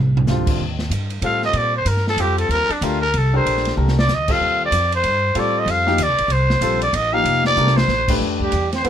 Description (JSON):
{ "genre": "modal jazz", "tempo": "189 BPM", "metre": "3/4", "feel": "swing 62% on 8ths", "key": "Eb lydian", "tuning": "A4 = 440 Hz", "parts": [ { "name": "upright bass", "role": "bass", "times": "0.0-8.9 s", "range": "F1 to Bb2", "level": "-21 LUFS", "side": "equal", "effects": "none" }, { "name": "open jazz drum kit", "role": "drums", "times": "0.2-8.9 s", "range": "crash cymbal, hi-hat, kick drum, ride cymbal, snare drum, toms", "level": "-25 LUFS", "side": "right 1 dB", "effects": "none" }, { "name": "warm grand piano", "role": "accompaniment", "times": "0.3-8.9 s", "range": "D3 to Cb5", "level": "-24 LUFS", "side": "left 3 dB", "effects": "none" }, { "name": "growling trumpet", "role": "melody", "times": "1.2-8.9 s", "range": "D4 to F5", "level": "-18 LUFS", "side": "equal", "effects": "none" }, { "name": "trombone with cup mute", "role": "second line", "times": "8.4-8.9 s", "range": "G3 to C4", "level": "-24 LUFS", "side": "right 4 dB", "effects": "none" } ], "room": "little or no reverb", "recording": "close, detailed microphones", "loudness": "-16 LUFS", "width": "side -9 dB against mid", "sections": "0.6-8.2 A section", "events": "drum fill 0.0, 3.8-4.1, 7.6-7.9; trumpet solo 0.0-8.2", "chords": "0.0 Bb69 (rootless); 0.6 Ebmaj9; 4.4 F; 8.2 Fmaj9", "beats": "0.28 | 0.59 0.91 1.23 | 1.55 1.86 2.18 | 2.50 2.82 3.14 | 3.45 3.77 4.09 | 4.41 4.72 5.04 | 5.36 5.67 5.99 | 6.31 6.63 6.94 | 7.26 7.58 7.90 | 8.21 8.53 8.85" }